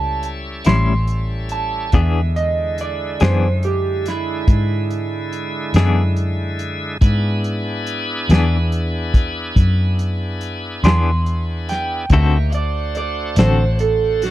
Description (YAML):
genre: slow blues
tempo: 47 BPM (dotted quarters)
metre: 12/8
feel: straight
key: unclear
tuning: A4 = 439 Hz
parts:
  - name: electric guitar at the edge of break-up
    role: second line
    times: 0.0-14.3 s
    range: E4 to C6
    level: -23 LUFS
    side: right 6 dB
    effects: none
  - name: bright tonewheel organ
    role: sustained chords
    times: 0.0-14.3 s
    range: D3 to C#5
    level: -27 LUFS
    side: left 1 dB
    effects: slow rotary speaker, overdrive
  - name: vintage muted fingered electric bass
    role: bass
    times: 0.0-14.3 s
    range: A1 to G#2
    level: -19 LUFS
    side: equal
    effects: none
  - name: warm soul drum kit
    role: drums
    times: 0.2-14.3 s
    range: hi-hat, kick drum, snare drum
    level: -16 LUFS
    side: equal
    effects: none
  - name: clean electric guitar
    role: accompaniment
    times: 0.7-13.6 s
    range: A2 to A4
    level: -20 LUFS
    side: left 6 dB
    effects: tremolo
room: little or no reverb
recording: dry, close 1970s-style studio recording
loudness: -16 LUFS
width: side -14 dB against mid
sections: 0.0-14.3 A section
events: clean electric guitar solo 0.0-14.3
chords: 0.0 A7; 1.9 E7; 12.1 D7